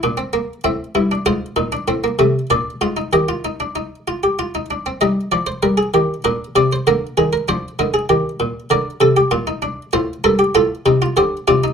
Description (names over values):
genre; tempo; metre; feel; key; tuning
classical, baroque-style 3-part fugue for harpsichord; 97 BPM; 3/4; straight; Eb major; A4 = 440 Hz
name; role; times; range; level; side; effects
buff-stop harpsichord; solo; 0.0-11.7 s; G2 to E5; -15 LUFS; equal; none
room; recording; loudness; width
wet small room reverb, RT60 0.5 s; minimal, uncompressed stereo recording; -16 LUFS; side -7 dB against mid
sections
0.0-5.0 A section; 5.0-11.7 B section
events
none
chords
0.0 E7(b5, no3) (rootless); 0.7 Am; 1.3 Fm/Ab; 1.9 Am; 2.5 Bb7; 3.1 Eb; 6.2 Bbadd9; 6.9 Bb7/D; 8.1 Eb; 8.7 Bb; 9.9 Gm11; 10.6 F7/A